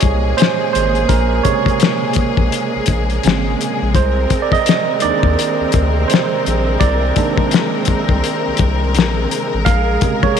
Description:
R&B, neo-soul; 84 BPM; 4/4; swing 60% on 16ths; A4 = 442 Hz
barky tine electric piano; accompaniment; 0.0-10.4 s; C3 to F5; -18 LUFS; right 11 dB; auto-pan
clear studio string section; sustained chords; 0.0-10.4 s; Bb2 to Bb4; -20 LUFS; left 2 dB
round analog bass; bass; 0.0-10.0 s; Ab1 to Eb2; -18 LUFS; left 1 dB
cloth-damped thuddy drum kit; drums; 0.0-10.4 s; hi-hat, kick drum, snare drum; -16 LUFS; left 5 dB
moderate echo chamber reverb, RT60 2.5 s; 1960s-style stereo; -13 LUFS; side -7 dB against mid
0.0-10.4 A section
tine electric piano solo 0.0-10.4
0.0 Bbm9; 4.0 Cm9; 9.7 Bbm9

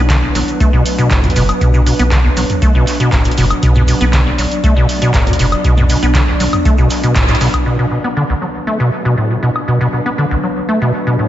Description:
acid house; 119 BPM; 4/4; straight; B minor; A4 = 440 Hz
warbly tape-like pad; sustained chords; 0.0-11.3 s; F#3 to D5; -20 LUFS; equal; chorus, built-in reverb, sidechain pumping
round analog bass; bass; 0.0-7.5 s; F#1 to B1; -16 LUFS; equal; sidechain pumping
acid bass, square; riff; 0.1-11.3 s; B1 to B3; -15 LUFS; equal; lush chorus, sidechain pumping, tape echo
electronic kick drum; drums; 0.1-7.6 s; -15 LUFS; equal
punchy analog drum machine; drums; 0.1-9.7 s; crash cymbal, handclaps, hi-hat, toms, woodblock; -20 LUFS; equal; low-pass filter on hats, low-pass filter on snare, low-pass filter on perc, low-pass filter on toms, low-pass filter on cymbals, low-pass filter on room
cabasa; percussion; 0.1-7.6 s; -32 LUFS; right 4 dB
moderate lush hall reverb, RT60 1.7 s; dreamy mix soaked in reverb, nothing above 7.8 kHz; -11 LUFS; side -13 dB against mid
0.0-7.7 A section; 7.7-11.3 B section
band accent 7.2; filter sweep on drum 7.7-11.3; filter sweep on ambient pad 7.7-11.3
0.0 Bm

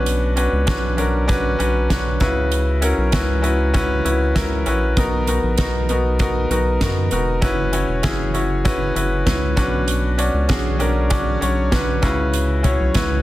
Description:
piano-driven pop; 98 BPM; 4/4; straight; F# mixolydian; A4 = 439 Hz
bright concert grand piano; accompaniment; 0.0-13.2 s; B2 to D5; -20 LUFS; left 1 dB
round analog bass; bass; 0.0-13.2 s; E1 to F#2; -21 LUFS; equal
soft-mallet drum kit; drums; 0.1-13.1 s; hi-hat, kick drum, snare drum, toms; -22 LUFS; equal
light reverb; dense, heavily limited modern master; -16 LUFS; side -16 dB against mid
0.0-13.2 A section
0.0 Bmadd9; 2.2 F#7sus4; 5.0 Bmaj7; 7.4 F#7sus4; 9.6 Bmadd9; 12.0 F#7sus4

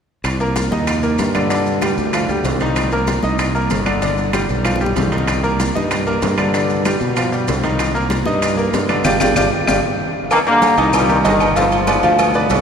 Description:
latin, salsa; 191 BPM; 4/4; straight; C minor; A4 = 440 Hz
modern bright fingered electric bass; bass; 0.2-12.6 s; G1 to B2; -20 LUFS; right 1 dB
bongos and cowbell; percussion; 0.2-12.6 s; -26 LUFS; left 5 dB
claves; percussion; 0.2-12.3 s; -28 LUFS; equal
congas; percussion; 0.2-12.6 s; -27 LUFS; left 1 dB
maracas; percussion; 0.2-12.6 s; -31 LUFS; left 3 dB
timbales and agogo bells; percussion; 0.2-12.6 s; -23 LUFS; right 4 dB
bright grand piano; accompaniment; 0.4-12.6 s; D3 to F5; -19 LUFS; left 1 dB
bright trombone section; melody; 10.3-12.2 s; F2 to Bb3; -16 LUFS; left 1 dB
wet cathedral reverb, RT60 4.6 s; recorded in a church or concert hall; -14 LUFS; side -7 dB against mid
0.2-10.3 A section; 10.3-12.6 B section
drum fill 4.7-5.3, 9.5-10.3; band accent 9.1-10.3
0.2 Cm7; 1.5 G5; 2.8 Cm7; 4.0 G7; 5.3 Cm7; 6.5 G7; 7.8 Cm7; 9.1 G5; 10.3 Cm7; 11.6 G7

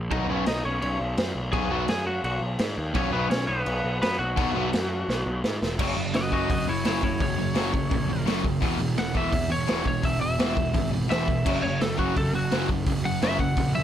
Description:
punk rock; 169 BPM; 4/4; straight; A4 = 439 Hz
fuzz picked electric bass; bass; 0.0-13.8 s; E1 to G#2; -30 LUFS; equal; overdrive
lightly driven lead guitar; melody; 0.1-13.8 s; B3 to G#5; -29 LUFS; equal
crunchy overdriven guitar; riff; 0.1-13.8 s; E2 to B3; -30 LUFS; left 11 dB
sludgy distorted guitar; riff; 0.1-13.8 s; E2 to B3; -30 LUFS; right 9 dB; overdrive
raw garage drum kit; drums; 0.1-13.7 s; crash cymbal, hi-hat, kick drum, snare drum; -28 LUFS; equal
little or no reverb; -23 LUFS; side -10 dB against mid
0.0-5.8 A section; 5.8-13.8 B section
drum fill 5.1-5.8; lead electric guitar solo 5.8-13.8
0.1 B5; 5.8 F#5; 8.6 E5; 11.4 F#5

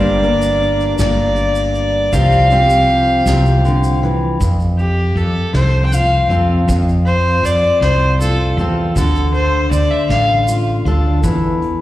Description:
acoustic folk duo or small band; 53 BPM (dotted quarters); 6/8; straight; F major; A4 = 440 Hz
warm fiddle; melody; 0.0-10.4 s; G4 to G5; -16 LUFS; equal; slapback echo, tape echo
fingerpicked steel-string acoustic guitar; accompaniment; 0.0-11.8 s; F2 to Bb4; -19 LUFS; left 2 dB
woody fretless electric bass; bass; 0.0-11.8 s; G1 to F2; -16 LUFS; equal
soft brush drum kit; drums; 0.2-11.8 s; hi-hat, kick drum, snare drum; -24 LUFS; equal
tube shaker; percussion; 0.4-11.4 s; -34 LUFS; right 2 dB
light reverb; live gig heard through the venue's PA, recital hall reverb; -12 LUFS; side -15 dB against mid
0.0-4.4 A section; 4.4-11.8 B section
fiddle solo 4.4-11.8
0.0 Gm; 2.1 Csus4; 4.4 F; 9.0 Dm; 11.2 N.C.

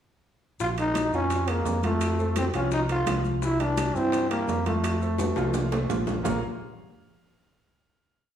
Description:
latin, salsa; 170 BPM; 4/4; straight; Bb harmonic minor; A4 = 440 Hz
growling trombone; melody; 0.6-6.4 s; A3 to F4; -28 LUFS; equal
clear concert grand piano; accompaniment; 0.6-6.4 s; E3 to F5; -31 LUFS; right 3 dB
fingered electric bass; bass; 0.6-6.4 s; Bb1 to G2; -29 LUFS; equal
bongos; percussion; 0.6-6.3 s; -34 LUFS; left 3 dB
congas; percussion; 0.6-6.3 s; -36 LUFS; left 3 dB
maracas; percussion; 0.6-6.3 s; -45 LUFS; left 6 dB
timbales; percussion; 0.8-6.3 s; -35 LUFS; right 6 dB
wet large studio reverb, RT60 1.2 s; band playing live in one room, small room ambience; -23 LUFS; side -9 dB against mid
0.6-6.3 A section; 6.3-7.7 final chord
drum fill 5.2-6.3
0.6 Bbm7; 2.0 F; 3.4 C7; 4.8 F; 6.3 Bbm7

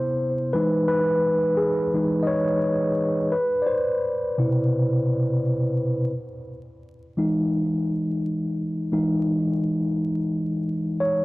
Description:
hip hop; 86 BPM; 4/4; swing 62% on 16ths; E major; A4 = 439 Hz
mellow tine electric piano; solo; 0.0-11.2 s; B2 to D#5; -21 LUFS; equal; medium stereo tremolo, analog delay
light reverb; worn, warbling old tape, cassette tape, vinyl crackle, warbly pitch drift; -21 LUFS; side -21 dB against mid
0.0-11.2 A section
tine electric piano solo 0.0-11.2
0.0 Cmaj7; 0.5 Emaj7; 3.3 Cmaj7; 6.1 Emaj7

